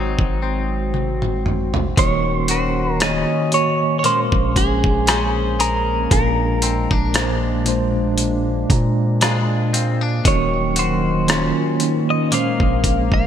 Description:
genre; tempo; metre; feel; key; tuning
contemporary R&B; 58 BPM; 4/4; swing 54% on 16ths; Bb minor; A4 = 440 Hz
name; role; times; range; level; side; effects
clean electric guitar; melody; 0.0-13.3 s; Eb4 to F5; -22 LUFS; equal; phaser, ping-pong delay
mellow tine electric piano; accompaniment; 0.0-13.3 s; Bb2 to Bb5; -23 LUFS; right 1 dB; medium stereo tremolo
hollow soft pad; sustained chords; 0.0-13.3 s; Eb3 to Gb4; -27 LUFS; right 2 dB; chorus
direct-recorded clean electric guitar; arpeggios; 0.0-13.3 s; Ab2 to C5; -27 LUFS; left 6 dB; lush chorus, ping-pong delay
long sustained 808-style bass; bass; 0.0-13.3 s; Eb1 to Bb2; -23 LUFS; equal; none
dusty soul sampler-style drum kit; drums; 0.2-13.3 s; hi-hat, kick drum, rim click, toms; -20 LUFS; equal; overdrive, gated reverb
swell; sound effects; 12.0-13.3 s; none; -31 LUFS; left 1 dB; none
room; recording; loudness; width
moderate lush hall reverb, RT60 2.8 s; bright 1980s-style digital production; -16 LUFS; side -9 dB against mid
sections
0.0-2.0 A section; 2.0-13.3 B section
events
drum fill 0.9-2.0; tine electric piano fill 8.2-10.3; swell 12.0-13.3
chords
0.0 Ab7; 2.0 Ebm7; 4.0 Bbm9; 6.1 Bb7; 10.3 Ebm7; 12.3 Bbm9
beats
0.94 | 1.98 3.01 4.04 5.08 | 6.11 7.15 8.18 9.22 | 10.25 11.29 12.32

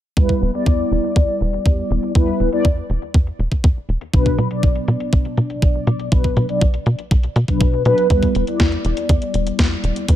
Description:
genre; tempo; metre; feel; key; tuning
italo disco; 121 BPM; 4/4; straight; E minor; A4 = 440 Hz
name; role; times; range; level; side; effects
mellow synth brass; stabs; 0.2-10.2 s; B2 to D5; -20 LUFS; left 1 dB; chorus, phaser, ping-pong delay
tight sequencer bass; bass; 0.2-10.2 s; E1 to B2; -19 LUFS; equal; none
clean 12-bit digital drum machine; drums; 0.2-10.2 s; hi-hat, snare drum; -26 LUFS; left 1 dB; overdrive, low-pass filter on hats, low-pass filter on snare
electronic kick drum; drums; 0.2-10.2 s; none; -16 LUFS; equal; overdrive
room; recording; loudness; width
light reverb; none; -15 LUFS; side -12 dB against mid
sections
0.2-10.2 A section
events
filter sweep on drum 0.2-10.2; filter sweep on analog synth bass 0.2-10.2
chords
0.2 Em; 4.1 Bm; 8.1 Em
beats
| 0.17 0.67 1.16 1.66 | 2.15 2.65 3.15 3.64 | 4.14 4.63 5.13 5.62 | 6.12 6.62 7.11 7.61 | 8.10 8.60 9.10 9.59 | 10.09

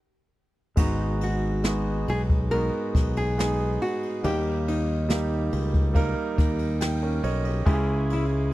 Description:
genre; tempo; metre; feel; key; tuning
pop ballad; 70 BPM; 4/4; straight; G# minor; A4 = 438 Hz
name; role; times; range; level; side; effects
nylon-string guitar; melody; 0.8-8.2 s; D#4 to A#4; -30 LUFS; left 1 dB; none
warm concert grand piano; accompaniment; 0.8-8.5 s; G#2 to G5; -28 LUFS; right 2 dB; none
modern bright fingered electric bass; bass; 0.8-8.5 s; G#1 to D#2; -26 LUFS; equal; none
jazz brush drum kit; drums; 0.8-8.3 s; crash cymbal, kick drum, ride cymbal, snare drum; -26 LUFS; equal; none
room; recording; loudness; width
small room ambience; dry, close 1970s-style studio recording; -22 LUFS; side -16 dB against mid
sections
0.8-8.5 A section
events
stop 0.0-0.8; grand piano fill 6.4-7.7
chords
0.0 N.C.; 0.8 G#m7; 4.2 D#; 7.7 C#m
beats
| 0.77 1.65 2.52 3.38 | 4.24 5.10 5.96 6.81 | 7.67 8.53

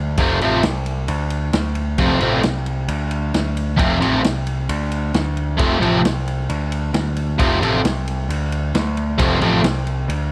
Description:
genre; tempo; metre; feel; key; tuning
garage rock duo or trio; 133 BPM; 4/4; straight; F major; A4 = 440 Hz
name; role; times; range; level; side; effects
growling picked electric bass; bass; 0.0-10.3 s; F1 to D2; -24 LUFS; equal; overdrive
crunchy overdriven guitar; riff; 0.2-9.6 s; F2 to C4; -20 LUFS; equal; none
vintage drum kit; drums; 0.2-10.2 s; kick drum, ride cymbal, snare drum; -26 LUFS; equal; none
room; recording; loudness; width
small room ambience; none; -19 LUFS; mono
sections
0.0-10.3 A section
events
none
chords
0.0 F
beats
| 0.19 0.64 1.09 1.54 | 1.99 2.44 2.89 3.34 | 3.79 4.24 4.69 5.14 | 5.59 6.04 6.49 6.94 | 7.39 7.84 8.29 8.74 | 9.19 9.64 10.09

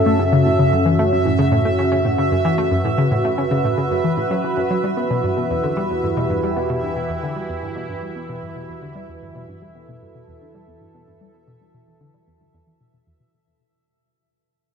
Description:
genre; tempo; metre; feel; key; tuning
ambient; 113 BPM; 4/4; straight; unclear; A4 = 440 Hz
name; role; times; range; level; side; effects
sweeping resonant pad; sustained chords; 0.0-13.3 s; E3 to B4; -22 LUFS; right 2 dB; chorus
analog drone; bass; 0.0-13.3 s; E2 to F#2; -27 LUFS; equal; chorus
bubbling stepped-filter texture; texture; 0.0-13.3 s; E5; -24 LUFS; equal; chorus, built-in reverb
analog pluck; riff; 0.1-13.3 s; E2 to C#4; -21 LUFS; left 2 dB; chorus, cassette tape, ping-pong delay
room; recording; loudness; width
wet huge ambient reverb, RT60 7.8 s; nothing above 10.9 kHz; -17 LUFS; side -7 dB against mid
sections
0.0-13.3 A section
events
fade-out on synth drone 0.0-13.3; fade-out 0.0-13.3; filter sweep on synth arpeggio sound 0.0-13.3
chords
0.0 F#m; 4.8 Emadd9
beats
0.06 | 0.59 1.12 1.65 2.18 | 2.71 3.25 3.78 4.31 | 4.84 5.37 5.90 6.43 | 6.96 7.49 8.03 8.56 | 9.09 9.62 10.15 10.68 | 11.21 11.74 12.27 12.80

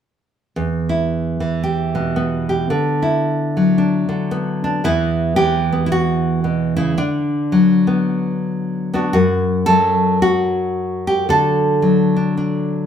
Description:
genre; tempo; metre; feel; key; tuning
folk, solo fingerstyle acoustic guitar; 112 BPM; 4/4; swing 61% on 8ths; E minor; A4 = 440 Hz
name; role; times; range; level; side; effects
nylon-string guitar; solo; 0.6-12.9 s; E2 to A4; -15 LUFS; equal; none
room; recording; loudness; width
moderate large studio reverb, RT60 1.1 s; band playing live in one room; -15 LUFS; side -8 dB against mid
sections
0.5-4.8 A section; 4.8-12.9 B section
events
none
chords
0.5 Em; 2.7 Bm/D; 4.8 E5; 7.0 Bm/D; 9.1 N.C.; 11.3 D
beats
| 0.54 1.08 1.62 2.15 | 2.69 3.23 3.77 4.30 | 4.84 5.38 5.92 6.45 | 6.99 7.53 8.06 8.60 | 9.13 9.67 10.21 10.74 | 11.28 11.81 12.35

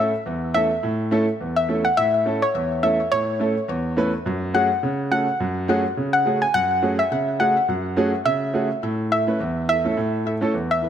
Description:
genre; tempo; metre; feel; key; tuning
dancehall; 105 BPM; 4/4; swing 56% on 16ths; A major; A4 = 440 Hz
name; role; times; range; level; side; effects
soft round pluck; melody; 0.0-10.8 s; C#5 to G#5; -22 LUFS; left 1 dB; chorus, ping-pong delay
warm grand piano; accompaniment; 0.0-10.9 s; E2 to B4; -22 LUFS; right 1 dB; none
room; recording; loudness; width
light reverb, small room ambience; none; -19 LUFS; side -9 dB against mid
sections
0.0-8.8 A section; 8.8-10.9 B section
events
none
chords
0.0 A; 4.3 F#madd9; 8.8 A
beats
0.26 0.83 1.40 | 1.97 2.54 3.12 3.69 | 4.26 4.83 5.40 5.97 | 6.54 7.12 7.69 8.26 | 8.83 9.40 9.97 10.54

